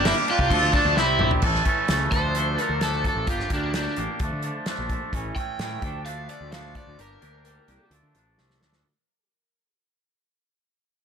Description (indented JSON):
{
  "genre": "indie rock",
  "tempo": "129 BPM",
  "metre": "4/4",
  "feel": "straight",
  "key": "D minor",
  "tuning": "A4 = 439 Hz",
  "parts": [
    { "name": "overdriven semi-hollow guitar", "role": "melody", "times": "0.0-7.9 s", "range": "D4 to G5", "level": "-28 LUFS", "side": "equal", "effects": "tape echo" },
    { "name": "bell-like tine electric piano", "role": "second line", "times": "0.0-1.3 s", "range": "D5 to F5", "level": "-38 LUFS", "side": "right 2 dB", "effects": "none" },
    { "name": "twangy electric guitar", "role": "riff", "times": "0.0-8.8 s", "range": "E3 to A4", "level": "-26 LUFS", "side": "right 1 dB", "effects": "double-tracked left and right" },
    { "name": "fuzz picked electric bass", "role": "bass", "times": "0.0-8.8 s", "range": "G1 to D3", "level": "-29 LUFS", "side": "equal", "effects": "overdrive" },
    { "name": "loose indie drum kit", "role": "drums", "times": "0.1-8.8 s", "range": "crash cymbal, hi-hat, kick drum, snare drum, toms", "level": "-27 LUFS", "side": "equal", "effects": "none" }
  ],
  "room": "small room ambience",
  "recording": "dark, warm production",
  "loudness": "-21 LUFS",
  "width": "side -7 dB against mid",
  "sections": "0.0-1.4 A section; 1.4-8.8 B section",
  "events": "drum fill 1.0-1.4, 8.4-8.8; fade-out 1.4-8.8; overdriven electric guitar solo 1.4-8.8",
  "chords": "0.0 Gm; 0.5 Dm; 1.0 C; 1.4 A; 2.1 Dm; 3.3 Gm; 4.2 Dm; 5.1 A; 5.8 Dm; 7.0 Gm; 7.9 Dm",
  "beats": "0.05 0.51 0.97 | 1.43 1.89 2.35 2.82 | 3.28 3.74 4.21 4.67 | 5.13 5.60 6.06 6.53 | 6.99 7.45 7.92 8.38"
}